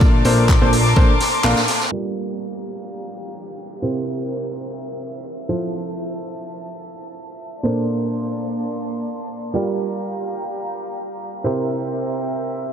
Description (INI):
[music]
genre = piano house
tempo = 126 BPM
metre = 4/4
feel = swing 53% on 16ths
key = G dorian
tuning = A4 = 441 Hz
[part]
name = warm chamber violin section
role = sustained chords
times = 0.0-12.7 s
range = Bb3 to D6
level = -27 LUFS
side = left 1 dB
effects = sidechain pumping
[part]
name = bright baby grand piano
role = riff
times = 0.0-12.7 s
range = Bb2 to F5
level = -23 LUFS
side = right 1 dB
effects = sidechain pumping, tape echo
[part]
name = fat analog bass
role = bass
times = 0.0-1.5 s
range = Bb1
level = -19 LUFS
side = equal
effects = sidechain pumping
[part]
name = electronic kick drum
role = drums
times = 0.0-1.1 s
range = none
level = -14 LUFS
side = equal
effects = none
[part]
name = tambourine and snare drum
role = drums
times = 0.0-1.9 s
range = none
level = -29 LUFS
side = equal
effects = high-pass filter on hats, high-pass filter on snare, high-pass filter on perc, high-pass filter on room
[part]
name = garage drum kit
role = drums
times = 0.3-1.8 s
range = handclaps, hi-hat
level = -25 LUFS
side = equal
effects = none
[part]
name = downlifter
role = sound effects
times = 2.2-5.7 s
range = none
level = -42 LUFS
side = equal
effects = none
[sound]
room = moderate huge ambient reverb, RT60 6.5 s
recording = dreamy mix soaked in reverb, low-pass filter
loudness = -19 LUFS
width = side -8 dB against mid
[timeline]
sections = 0.0-1.9 A section; 1.9-12.7 B section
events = break 1.4-1.9; band accent 1.4; filter sweep 1.9-12.7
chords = 0.0 Bbmaj9; 1.9 Gm7; 3.8 C7; 5.5 Fmaj7; 7.6 Bbmaj9; 9.5 Gm7; 11.4 C7